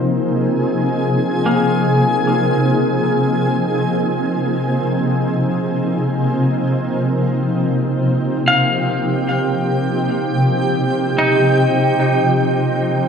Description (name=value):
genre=ambient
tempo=free time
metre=none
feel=none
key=Ab major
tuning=A4 = 445 Hz
part: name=shimmering ambient pad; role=sustained chords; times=0.0-13.1 s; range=C3 to Ab4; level=-15 LUFS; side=equal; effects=chorus, built-in reverb
part: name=semi-hollow electric guitar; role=arpeggios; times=0.0-13.1 s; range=Bb3 to F5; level=-20 LUFS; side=left 3 dB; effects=spring reverb, analog delay
room=moderate plate reverb, RT60 2.5 s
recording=echo-heavy mix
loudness=-15 LUFS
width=side -7 dB against mid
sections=0.0-13.1 A section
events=none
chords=0.0 Ab; 6.3 Eb